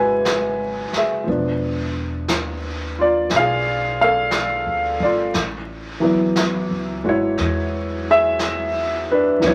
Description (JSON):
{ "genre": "jazz", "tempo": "59 BPM", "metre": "4/4", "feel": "swing 66% on 8ths", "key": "A major", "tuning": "A4 = 441 Hz", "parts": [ { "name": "warm concert grand piano", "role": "accompaniment", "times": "0.0-9.5 s", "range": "C#3 to G#5", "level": "-21 LUFS", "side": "equal", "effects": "none" }, { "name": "upright bass", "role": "bass", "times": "0.0-9.5 s", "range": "E1 to E2", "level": "-31 LUFS", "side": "equal", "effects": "none" }, { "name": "vintage brush drum kit", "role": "drums", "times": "0.2-9.5 s", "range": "brushed snare drum, hi-hat, snare drum", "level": "-29 LUFS", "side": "equal", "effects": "none" } ], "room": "moderate studio reverb, RT60 0.6 s", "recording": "vinyl crackle", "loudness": "-20 LUFS", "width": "mono", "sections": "0.0-9.5 A section", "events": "none", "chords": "0.0 C#m7; 1.3 E7b9; 5.3 Amaj7", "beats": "0.25 | 1.26 2.28 3.30 4.32 | 5.34 6.36 7.38 8.39 | 9.41" }